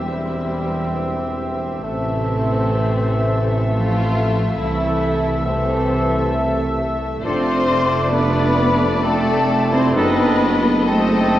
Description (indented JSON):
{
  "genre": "classical, slow romantic movement for symphony orchestra",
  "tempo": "67 BPM",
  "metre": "3/4",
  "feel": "rubato",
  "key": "unclear",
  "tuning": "A4 = 439 Hz",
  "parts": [
    { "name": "muted studio violin section", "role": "melody", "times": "0.0-11.4 s", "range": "D5 to E5", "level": "-30 LUFS", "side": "left 4 dB", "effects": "none" },
    { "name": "mellow flute section", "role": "second line", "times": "0.0-11.4 s", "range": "C5 to C6", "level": "-28 LUFS", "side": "left 2 dB", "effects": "none" },
    { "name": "muted studio violin section", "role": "second line", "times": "0.0-11.4 s", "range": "C4 to C5", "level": "-27 LUFS", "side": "left 4 dB", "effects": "none" },
    { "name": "warm clarinet", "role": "second line", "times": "0.0-11.4 s", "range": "E3 to F4", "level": "-26 LUFS", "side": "left 1 dB", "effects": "none" },
    { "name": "warm oboe", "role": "second line", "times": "0.0-11.4 s", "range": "D5 to E5", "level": "-28 LUFS", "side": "equal", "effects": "none" },
    { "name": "clear bassoon", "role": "accompaniment", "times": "0.0-11.4 s", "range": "A3 to C4", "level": "-27 LUFS", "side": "right 1 dB", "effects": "none" },
    { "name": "muted studio viola section", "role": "accompaniment", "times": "0.0-11.4 s", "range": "G3 to C5", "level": "-29 LUFS", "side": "equal", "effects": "none" },
    { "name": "mellow French horn section", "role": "sustained chords", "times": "0.0-10.3 s", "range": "E3 to D#4", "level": "-28 LUFS", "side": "left 2 dB", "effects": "none" },
    { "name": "mellow trumpet section", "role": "stabs", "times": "0.0-10.3 s", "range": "G4 to A4", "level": "-28 LUFS", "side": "equal", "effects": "none" },
    { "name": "dark tuba", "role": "bass", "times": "0.0-11.4 s", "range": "E1 to C2", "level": "-26 LUFS", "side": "right 2 dB", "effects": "none" },
    { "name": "muted studio cello section", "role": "bass", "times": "0.0-11.4 s", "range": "C3 to C4", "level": "-24 LUFS", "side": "right 1 dB", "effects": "none" },
    { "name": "muted studio double bass section", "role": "bass", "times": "0.0-11.4 s", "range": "F1 to E2", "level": "-24 LUFS", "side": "right 1 dB", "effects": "none" }
  ],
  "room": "moderate concert hall reverb, RT60 2.2 s",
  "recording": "worn, warbling old tape, cassette tape, warbly pitch drift",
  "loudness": "-16 LUFS",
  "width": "side -13 dB against mid",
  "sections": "0.0-11.4 A section",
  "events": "none",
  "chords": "0.0 C/E; 1.8 Am; 4.6 Am/C; 7.2 Dm7/F; 10.0 F#dim7",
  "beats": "0.08 0.97 | 1.85 2.73 3.69 | 4.58 5.45 6.34 | 7.24 8.14 9.05 | 9.96 10.88"
}